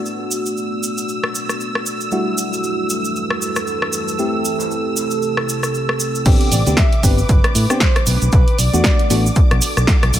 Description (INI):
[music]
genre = deep house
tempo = 116 BPM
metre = 4/4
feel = swing 58% on 16ths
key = A dorian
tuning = A4 = 440 Hz
[part]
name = deep dark ambient pad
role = sustained chords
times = 0.0-10.2 s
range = C3 to B5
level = -27 LUFS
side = right 3 dB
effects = chorus, built-in reverb, vintage 12-bit sampler grit, sidechain pumping
[part]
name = mellow FM electric piano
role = stabs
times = 0.0-9.3 s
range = G3 to G4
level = -23 LUFS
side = equal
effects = chorus, sidechain pumping, low-pass filter, dub echo
[part]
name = analog string pad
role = texture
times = 0.0-10.2 s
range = D6 to E6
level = -27 LUFS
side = right 1 dB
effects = ensemble chorus, sidechain pumping
[part]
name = cabasa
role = percussion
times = 0.1-10.2 s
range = none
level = -25 LUFS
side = right 2 dB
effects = none
[part]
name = punchy analog drum machine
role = drums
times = 1.2-10.2 s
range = crash cymbal, hi-hat, rim click, snare drum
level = -21 LUFS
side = equal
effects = none
[part]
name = fingered electric bass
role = bass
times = 6.3-10.2 s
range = G1 to A2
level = -17 LUFS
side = equal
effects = tube saturation, sidechain pumping
[part]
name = electronic kick drum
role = drums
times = 6.3-10.0 s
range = none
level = -14 LUFS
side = equal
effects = none
[part]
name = breathy flute-like synth lead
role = melody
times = 6.5-9.6 s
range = B4 to E5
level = -26 LUFS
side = left 1 dB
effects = tremolo, analog chorus, vintage 12-bit sampler grit, dub echo
[sound]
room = light reverb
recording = none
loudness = -15 LUFS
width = side -12 dB against mid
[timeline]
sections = 0.0-6.3 A section; 6.3-10.2 B section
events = drop 6.3-10.2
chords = 0.0 Bm7; 2.1 Em11; 4.2 C6; 6.3 Am11; 8.1 Bm7